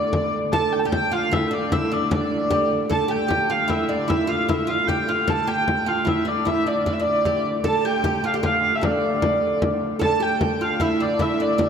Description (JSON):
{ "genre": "medieval dance", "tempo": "152 BPM", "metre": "3/4", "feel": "straight", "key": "D minor", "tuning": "A4 = 440 Hz", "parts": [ { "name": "dark hurdy-gurdy", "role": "melody", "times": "0.0-11.7 s", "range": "D5 to A5", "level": "-22 LUFS", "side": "equal", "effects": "none" }, { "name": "oud", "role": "second line", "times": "0.0-11.7 s", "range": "D4 to A4", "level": "-26 LUFS", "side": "right 3 dB", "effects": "none" }, { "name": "dark hurdy-gurdy", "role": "drone", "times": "0.0-11.7 s", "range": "D3 to A3", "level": "-28 LUFS", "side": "right 1 dB", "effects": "none" }, { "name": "frame drum", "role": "percussion", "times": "0.1-11.7 s", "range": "none", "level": "-27 LUFS", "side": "left 2 dB", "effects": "none" } ], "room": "wet cathedral reverb, RT60 4.8 s", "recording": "in a vast, echoing space", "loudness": "-19 LUFS", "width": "side -7 dB against mid", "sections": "0.5-10.0 A section; 10.0-11.7 A section", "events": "none", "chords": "none", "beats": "0.13 | 0.53 0.92 1.32 | 1.71 2.11 2.50 | 2.90 3.29 3.69 | 4.09 4.48 4.88 | 5.27 5.67 6.06 | 6.46 6.85 7.25 | 7.64 8.04 8.43 | 8.83 9.22 9.62 | 10.01 10.41 10.80 | 11.20 11.59" }